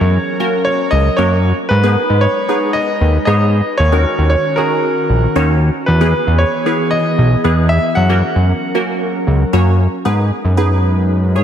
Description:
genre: pop.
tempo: 115 BPM.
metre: 4/4.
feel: straight.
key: G# minor.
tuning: A4 = 436 Hz.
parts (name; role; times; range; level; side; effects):
clear concert grand piano; melody; 0.0-9.5 s; A#4 to F#5; -18 LUFS; equal; analog delay.
wavetable chord stab; accompaniment; 0.0-11.4 s; A#3 to C#5; -20 LUFS; right 1 dB; phaser.
airy breathy pad; sustained chords; 0.0-11.4 s; D#3 to B4; -20 LUFS; equal; chorus.
fat analog bass; bass; 0.0-11.4 s; A#1 to G#2; -12 LUFS; equal; none.
room: moderate lush hall reverb, RT60 2.4 s.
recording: dreamy mix soaked in reverb.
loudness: -12 LUFS.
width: side -9 dB against mid.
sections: 0.0-10.1 A section; 10.1-11.4 B section.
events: none.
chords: 0.0 F#; 1.7 G#m; 3.8 D#m7; 5.9 E; 8.0 F#; 10.1 G#m.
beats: 0.14 0.66 1.18 | 1.71 2.23 2.75 3.27 | 3.79 4.31 4.83 5.36 | 5.88 6.40 6.92 7.44 | 7.97 8.49 9.01 9.53 | 10.05 10.57 11.10.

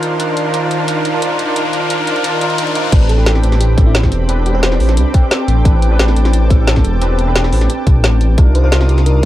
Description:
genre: liquid drum and bass.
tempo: 176 BPM.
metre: 4/4.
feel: straight.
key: unclear.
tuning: A4 = 443 Hz.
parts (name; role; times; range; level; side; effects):
barky tine electric piano; accompaniment; 0.0-9.3 s; C4 to C5; -18 LUFS; equal; overdrive, ensemble chorus, digital delay.
lush unison pad; sustained chords; 0.0-9.3 s; Eb3 to Eb6; -24 LUFS; right 2 dB; chorus, sidechain pumping.
drum and bass drum kit; drums; 0.0-9.3 s; crash cymbal, hi-hat, snare drum; -19 LUFS; equal; none.
riser; sound effects; 0.0-2.9 s; none; -23 LUFS; equal; none.
swelling detuned saw bass; bass; 2.9-9.3 s; E1 to C2; -12 LUFS; equal; none.
electronic kick drum; drums; 2.9-9.3 s; none; -10 LUFS; equal; none.
bell-like FM electric piano; melody; 3.1-5.0, 8.6-9.3 s; E4 to C5; -24 LUFS; equal; chorus, cassette tape, digital delay.
room: light reverb, digital ambience.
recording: dark, warm production.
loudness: -11 LUFS.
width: side -14 dB against mid.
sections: 0.0-2.9 A section; 2.9-9.3 B section.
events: build-up 0.0-2.9; riser 0.0-2.9; drop 2.9-9.3.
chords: 0.0 Cm11; 2.9 Am11; 8.4 Cm11.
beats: | 0.20 0.54 0.88 1.22 | 1.56 1.90 2.24 2.58 | 2.92 3.27 3.61 3.95 | 4.29 4.63 4.97 5.31 | 5.65 5.99 6.33 6.67 | 7.01 7.36 7.70 8.04 | 8.38 8.72 9.06.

